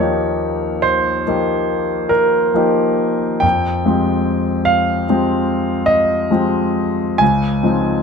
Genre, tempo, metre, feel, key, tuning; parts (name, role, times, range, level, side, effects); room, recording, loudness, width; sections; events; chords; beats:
classical, impressionist solo piano; 44-51 BPM (dotted quarters); 9/8; rubato; A4 = 442 Hz
clear concert grand piano; solo; 0.0-8.0 s; Db2 to Ab5; -14 LUFS; equal
light reverb; close, detailed microphones; -14 LUFS; side -6 dB against mid
0.0-8.0 A section
0.0 Eb9; 3.4 Fmadd9; 7.2 Dbmaj9
0.85 2.12 | 3.43 4.67 5.88 | 7.21